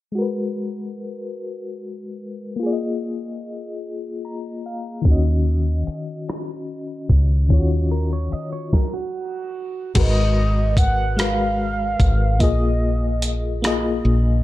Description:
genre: slow six-eight R&B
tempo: 49 BPM (dotted quarters)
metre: 6/8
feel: straight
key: unclear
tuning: A4 = 441 Hz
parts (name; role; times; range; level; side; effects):
- FM electric piano with tremolo; accompaniment; 0.1-14.4 s; Eb3 to Bb5; -25 LUFS; left 3 dB; none
- dusty soul sampler-style drum kit; drums; 5.0-13.8 s; crash cymbal, hi-hat, kick drum, rim click, snare drum; -19 LUFS; equal; none
- woody fretless electric bass; bass; 5.1-14.4 s; Ab1 to Eb2; -19 LUFS; equal; none
- clean electric guitar; second line; 7.9-9.9 s; Gb4 to Eb5; -31 LUFS; right 7 dB; none
- mellow horn-like synth lead; melody; 10.0-13.3 s; Eb5 to Gb5; -25 LUFS; right 1 dB; chorus
room: little or no reverb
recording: low-pass filter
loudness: -18 LUFS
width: side -16 dB against mid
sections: 0.2-10.0 A section; 10.0-14.4 B section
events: filter sweep 0.2-10.0; FM electric piano fill 3.8-5.1; stop 8.7-10.0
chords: 0.2 Abm9; 2.6 Bb7sus4; 5.1 Ebm7; 10.0 Abm9; 12.4 Bb7sus4

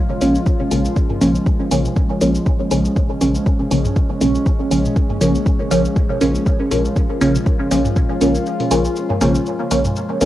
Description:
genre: dub techno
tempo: 120 BPM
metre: 4/4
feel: swing 55% on 16ths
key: Bb minor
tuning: A4 = 439 Hz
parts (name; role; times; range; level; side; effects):
- warbly tape-like pad; sustained chords; 0.0-10.3 s; F3 to F4; -23 LUFS; left 1 dB; chorus, built-in reverb, sidechain pumping, cassette tape
- filtered dub chord stab; stabs; 0.2-10.3 s; Db3 to Db4; -18 LUFS; equal; chorus, phaser, sidechain pumping, cassette tape, dub echo
- warm sub bass; bass; 0.2-10.3 s; Bb1; -23 LUFS; equal; tube saturation, sidechain pumping
- electronic hi-hat and cabasa; drums; 0.2-10.3 s; none; -29 LUFS; left 1 dB; none
- electronic kick drum; drums; 0.5-8.1 s; none; -17 LUFS; equal; none
- electronic toms; percussion; 0.6-9.9 s; none; -28 LUFS; equal; sidechain pumping on toms
room: moderate spring reverb, RT60 1.3 s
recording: home recording on cassette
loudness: -15 LUFS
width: side -14 dB against mid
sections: 0.0-10.3 A section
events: kick drops out 8.5-10.3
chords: 0.0 Bbm

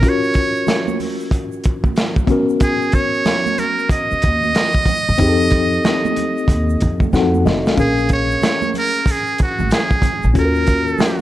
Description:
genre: hip hop, jazz-hop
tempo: 93 BPM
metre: 4/4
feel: swing 63% on 16ths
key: unclear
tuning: A4 = 440 Hz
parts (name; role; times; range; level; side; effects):
- trumpet with metal mute; melody; 0.0-11.2 s; Gb4 to D#5; -19 LUFS; right 2 dB; none
- mellow tine electric piano; accompaniment; 0.0-11.2 s; B3 to Gb5; -20 LUFS; left 3 dB; medium stereo tremolo
- crunchy breakbeat drum kit; drums; 0.0-11.2 s; hi-hat, kick drum, snare drum; -19 LUFS; equal; none
- egg shaker and congas; percussion; 0.0-11.2 s; none; -28 LUFS; right 13 dB; none
- upright bass; bass; 4.1-10.9 s; F1 to F#2; -19 LUFS; equal; none
room: light reverb, studio ambience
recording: dark, warm production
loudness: -14 LUFS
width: side -14 dB against mid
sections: 0.0-7.8 A section; 7.8-11.2 A section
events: break 0.0-2.6; tine electric piano fill 6.8-7.8; drum fill 7.1-7.8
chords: 0.0 Gbmaj7/Db; 2.3 Bmaj9; 5.2 F7; 7.1 F7b9; 7.8 Bbm7; 10.4 Ebm9

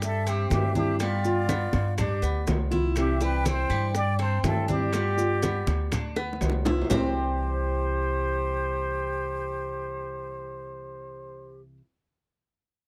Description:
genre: latin, Cuban son and guajira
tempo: 122 BPM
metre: 4/4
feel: straight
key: C major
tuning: A4 = 445 Hz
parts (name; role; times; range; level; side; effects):
- trumpet with plunger mute; melody; 0.0-11.6 s; F4 to D5; -34 LUFS; equal; none
- breathy bright concert flute; second line; 0.0-11.6 s; G4 to A5; -38 LUFS; equal; none
- flamenco guitar; accompaniment; 0.0-11.8 s; C3 to F4; -35 LUFS; equal; none
- Cuban tres; arpeggios; 0.0-11.8 s; G3 to C5; -36 LUFS; equal; none
- upright bass; bass; 0.0-11.8 s; C2 to G2; -31 LUFS; equal; none
- bongos; percussion; 0.0-7.0 s; none; -37 LUFS; equal; none
- congas; percussion; 0.0-7.0 s; none; -33 LUFS; equal; none
- maracas; percussion; 0.0-7.0 s; none; -44 LUFS; equal; none
- timbales; percussion; 0.3-7.0 s; none; -38 LUFS; equal; none
room: little or no reverb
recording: dry, close 1970s-style studio recording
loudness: -26 LUFS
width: mono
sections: 0.0-6.9 A section; 6.9-10.9 B section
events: drum fill 6.2-6.9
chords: 0.0 C; 1.0 G7; 3.0 C; 4.9 G7; 6.9 C

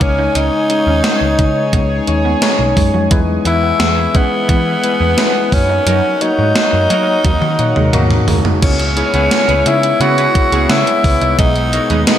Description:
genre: 1980s-style pop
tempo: 87 BPM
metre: 4/4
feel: straight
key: unclear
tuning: A4 = 443 Hz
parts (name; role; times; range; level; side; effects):
- raspy tenor saxophone; melody; 0.0-12.2 s; B3 to F#4; -16 LUFS; equal; shimmer reverb, slapback echo
- tine electric piano; accompaniment; 0.0-12.2 s; B2 to D#5; -18 LUFS; left 4 dB; shimmer reverb, slapback echo
- sweeping resonant pad; sustained chords; 0.0-12.2 s; C#3 to G#5; -24 LUFS; right 1 dB; chorus, shimmer reverb
- vintage muted picked electric bass; bass; 0.0-12.0 s; B1 to F#3; -18 LUFS; equal; none
- gated 80s digital drum machine; drums; 0.0-12.2 s; crash cymbal, hi-hat, kick drum, snare drum, toms; -16 LUFS; right 1 dB; gated reverb, gated reverb snare
- electric guitar at the edge of break-up; riff; 0.2-12.0 s; F#3 to D#4; -25 LUFS; right 6 dB; none
- funky polysynth comp; stabs; 5.9-12.0 s; C#4 to C#5; -26 LUFS; right 3 dB; chorus, shimmer reverb, slapback echo
room: wet recital hall reverb, RT60 1.7 s, digital ambience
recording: big arena sound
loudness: -11 LUFS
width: side -10 dB against mid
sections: 0.0-8.6 A section; 8.6-12.2 B section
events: band accent 5.9-8.6; drum fill 7.2-8.6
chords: 0.0 C#sus2; 3.1 E; 5.5 F#6; 7.2 D#m; 8.6 C#m7; 11.4 G#m/B

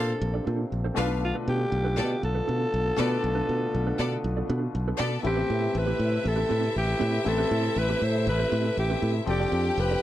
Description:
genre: disco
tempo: 119 BPM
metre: 4/4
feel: straight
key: A minor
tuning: A4 = 442 Hz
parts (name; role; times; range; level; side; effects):
- raspy alto saxophone; melody; 0.0-10.0 s; F4 to C5; -29 LUFS; equal; none
- clear studio string section; second line; 0.0-10.0 s; B3 to G5; -32 LUFS; left 1 dB; none
- clear grand piano; accompaniment; 0.0-10.0 s; Bb2 to D5; -35 LUFS; left 7 dB; none
- dark French horn section; sustained chords; 0.0-10.0 s; C3 to B4; -36 LUFS; equal; none
- fingered electric bass; bass; 0.0-9.9 s; F1 to B2; -27 LUFS; equal; none
- mellow electric guitar; accompaniment; 0.1-10.0 s; C4 to D5; -34 LUFS; right 7 dB; tremolo
room: little or no reverb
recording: dry, close 1970s-style studio recording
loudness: -24 LUFS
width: side -13 dB against mid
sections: 0.0-5.2 A section; 5.2-10.0 B section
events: none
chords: 0.0 Bbmaj9; 1.0 Bm7b5; 5.2 Am9; 9.3 F69

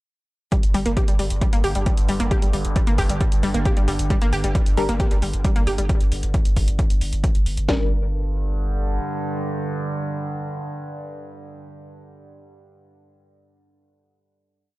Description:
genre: driving peak-time techno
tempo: 134 BPM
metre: 4/4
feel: straight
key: G minor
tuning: A4 = 440 Hz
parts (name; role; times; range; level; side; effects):
- analog pluck; riff; 0.5-7.9 s; G3 to G4; -26 LUFS; equal; chorus, sidechain pumping, tape echo
- overtone-sweeping drone; drone; 1.1-11.1 s; G2 to D3; -30 LUFS; right 1 dB; chorus, built-in reverb, sidechain pumping
- electronic hi-hat; drums; 0.5-7.7 s; none; -34 LUFS; equal; none
- techno drum kit; drums; 0.5-7.8 s; kick drum, snare drum; -20 LUFS; equal; none
- saturated sub bass; bass; 0.6-9.0 s; G1; -24 LUFS; equal; overdrive, sidechain pumping, low-pass filter
- filtered dub chord stab; stabs; 4.8, 7.7-11.1 s; G3 to Bb4; -27 LUFS; left 3 dB; phaser, analog chorus, sidechain pumping, tape echo
room: digital ambience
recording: dry, gritty hardware recording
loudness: -19 LUFS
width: side -19 dB against mid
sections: 0.5-7.7 groove; 7.7-11.3 final chord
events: none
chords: 0.5 G5; 7.7 Gm

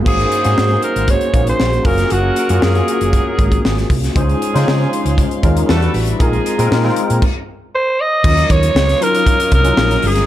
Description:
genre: polished 1980s jazz-funk pop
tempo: 117 BPM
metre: 4/4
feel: straight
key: Eb dorian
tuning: A4 = 439 Hz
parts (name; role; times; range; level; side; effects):
- tine electric piano; accompaniment; 0.0-10.3 s; Gb3 to C5; -19 LUFS; left 2 dB; medium stereo tremolo, ensemble chorus
- hollow-body short-scale fingered electric bass; bass; 0.0-10.2 s; Gb1 to Db3; -17 LUFS; equal; none
- growling alto saxophone; melody; 0.1-3.9, 7.8-10.3 s; Gb4 to Eb5; -16 LUFS; right 1 dB; none
- warm horn section; second line; 0.1-7.0 s; F3 to C5; -24 LUFS; right 2 dB; none
- crisp fusion drum kit; drums; 0.1-10.3 s; crash cymbal, hi-hat, kick drum, snare drum; -17 LUFS; equal; none
- warm studio string section; sustained chords; 4.2-10.3 s; G3 to Eb6; -28 LUFS; left 1 dB; none
room: light reverb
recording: dark, warm production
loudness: -12 LUFS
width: side -13 dB against mid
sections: 0.1-8.2 A section; 8.2-10.3 B section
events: stop 7.2-8.2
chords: 0.1 Ab9sus4; 1.9 Gbmaj9; 4.2 Dbmaj7; 5.7 Em7; 6.2 Bb9sus4; 8.2 Ebm9

